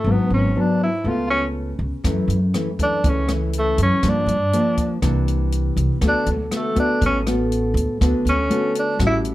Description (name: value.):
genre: bossa nova.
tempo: 121 BPM.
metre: 4/4.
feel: straight.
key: D major.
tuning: A4 = 439 Hz.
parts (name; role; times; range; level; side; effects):
breathy tenor saxophone; melody; 0.0-9.2 s; E3 to E#4; -21 LUFS; equal; plate reverb.
nylon-string guitar; accompaniment; 0.0-9.3 s; F#2 to F#4; -22 LUFS; left 1 dB; none.
upright bass; bass; 0.0-9.3 s; G#1 to G2; -21 LUFS; equal; none.
compact cocktail drum kit; drums; 2.0-9.3 s; hi-hat, kick drum, rim click; -25 LUFS; equal; none.
room: moderate studio reverb, RT60 0.5 s.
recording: dark, warm production.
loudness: -17 LUFS.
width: side -16 dB against mid.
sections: 0.0-9.3 A section.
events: tenor saxophone solo 0.0-9.3.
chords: 0.1 G#m7b5; 1.1 C#7b13; 2.0 F#m7; 4.0 Gm7; 5.0 C9; 6.0 D6.